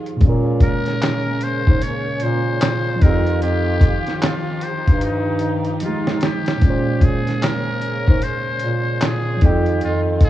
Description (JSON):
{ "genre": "lo-fi hip hop", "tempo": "75 BPM", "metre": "4/4", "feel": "swing 62% on 16ths", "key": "unclear", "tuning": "A4 = 444 Hz", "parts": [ { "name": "mellow reed electric piano", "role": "accompaniment", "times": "0.0-10.3 s", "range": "Bb2 to G5", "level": "-23 LUFS", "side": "right 2 dB", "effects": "cassette tape, low-pass filter" }, { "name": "warm studio string section", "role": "sustained chords", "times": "0.0-10.3 s", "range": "Db3 to G4", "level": "-28 LUFS", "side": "left 1 dB", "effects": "low-pass filter" }, { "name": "lo-fi sampler-style drum kit", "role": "drums", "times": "0.1-10.3 s", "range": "handclaps, hi-hat, kick drum, snare drum", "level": "-17 LUFS", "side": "equal", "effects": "vintage 12-bit sampler grit" }, { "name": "mellow bass clarinet", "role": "bass", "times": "0.2-10.3 s", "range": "F2 to Bb2", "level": "-21 LUFS", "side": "equal", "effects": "none" }, { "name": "trumpet with metal mute", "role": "melody", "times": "0.6-10.3 s", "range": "Eb4 to Db5", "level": "-26 LUFS", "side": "left 2 dB", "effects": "low-pass filter, tape echo" } ], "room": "light reverb", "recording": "worn, warbling old tape, cassette tape, warbly pitch drift, small room ambience", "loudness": "-16 LUFS", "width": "side -13 dB against mid", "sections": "0.0-6.6 A section; 6.6-10.3 B section", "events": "drum fill 5.0-6.6", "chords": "0.2 Bbm9; 3.0 Fm9; 6.6 Bbm9; 9.4 F7sus2", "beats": "| 0.22 1.02 1.82 2.62 | 3.42 4.22 5.02 5.82 | 6.62 7.42 8.22 9.02 | 9.82" }